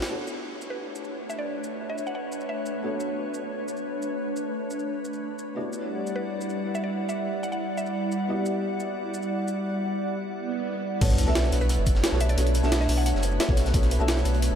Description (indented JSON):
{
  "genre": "liquid drum and bass",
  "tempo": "176 BPM",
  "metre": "4/4",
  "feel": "straight",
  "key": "B minor",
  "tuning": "A4 = 439 Hz",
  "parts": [
    { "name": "felt-muted upright piano", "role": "accompaniment", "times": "0.0-14.6 s", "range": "B3 to F#5", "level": "-33 LUFS", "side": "left 1 dB", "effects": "lush chorus, diffuse ambient delay" },
    { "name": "crunchy breakbeat drum kit", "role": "drums", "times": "0.0-0.1, 11.0-14.5 s", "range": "hi-hat, snare drum", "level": "-38 LUFS", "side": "right 1 dB", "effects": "high-pass filter on hats, small room ambience, high-pass filter on snare, high-pass filter on room" },
    { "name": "jungle sampler-style drum kit", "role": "drums", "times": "0.0-14.5 s", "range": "crash cymbal, hi-hat, shaker, snare drum", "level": "-32 LUFS", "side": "equal", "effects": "small room ambience" },
    { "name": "glassy FM pad", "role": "sustained chords", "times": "0.5-14.6 s", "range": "G3 to F#5", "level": "-30 LUFS", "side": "equal", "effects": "ensemble chorus, built-in reverb, sidechain pumping" },
    { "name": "mallet-like synth pluck", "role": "melody", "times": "0.7-2.8, 6.2-8.3, 11.6-13.7 s", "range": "B4 to F#5", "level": "-37 LUFS", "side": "equal", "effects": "chorus, cassette tape, diffuse ambient delay" },
    { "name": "swell and sub drop", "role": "sound effects", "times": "10.4-12.4 s", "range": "none", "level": "-34 LUFS", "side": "right 2 dB", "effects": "none" },
    { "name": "sub bass with octave", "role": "bass", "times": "11.0-14.6 s", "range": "F#1 to B1", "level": "-24 LUFS", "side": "equal", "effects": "none" },
    { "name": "electronic kick drum", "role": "drums", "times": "11.0-13.8 s", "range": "none", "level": "-23 LUFS", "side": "equal", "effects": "small room ambience" }
  ],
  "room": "moderate huge ambient reverb, RT60 8.2 s",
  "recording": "dreamy mix soaked in reverb",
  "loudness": "-25 LUFS",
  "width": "side -8 dB against mid",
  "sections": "0.1-11.0 A section; 11.0-14.6 B section",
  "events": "band accent 0.0; swell 10.4-11.0; drop 11.0-14.6; impact 11.0-12.4",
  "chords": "0.1 Bm9; 5.6 Em9; 11.0 Bm9"
}